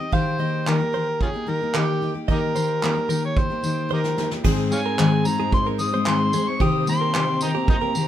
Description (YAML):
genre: acoustic pop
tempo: 111 BPM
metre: 4/4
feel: straight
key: Ab major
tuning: A4 = 440 Hz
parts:
  - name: overdriven harmonica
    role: melody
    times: 0.0-8.1 s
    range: Bb3 to Eb6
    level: -25 LUFS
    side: equal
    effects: none
  - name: picked steel-string acoustic guitar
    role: accompaniment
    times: 0.0-8.1 s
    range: Ab2 to Ab4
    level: -23 LUFS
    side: left 3 dB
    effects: none
  - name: direct-recorded clean electric guitar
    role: arpeggios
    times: 0.1-7.9 s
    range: G4 to F5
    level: -30 LUFS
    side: right 9 dB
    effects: none
  - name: soft brush drum kit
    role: drums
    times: 0.1-8.1 s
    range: crash cymbal, handclaps, kick drum, snare drum, tambourine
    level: -24 LUFS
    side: right 1 dB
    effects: none
  - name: dark studio string section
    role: sustained chords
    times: 4.4-8.1 s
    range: Ab2 to C5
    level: -31 LUFS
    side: equal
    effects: none
room: light reverb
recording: minimal, uncompressed stereo recording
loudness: -19 LUFS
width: side -11 dB against mid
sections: 0.0-4.4 A section; 4.4-8.1 B section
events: drum fill 3.9-4.4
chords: 0.1 Eb; 4.4 Ab; 6.6 Cm7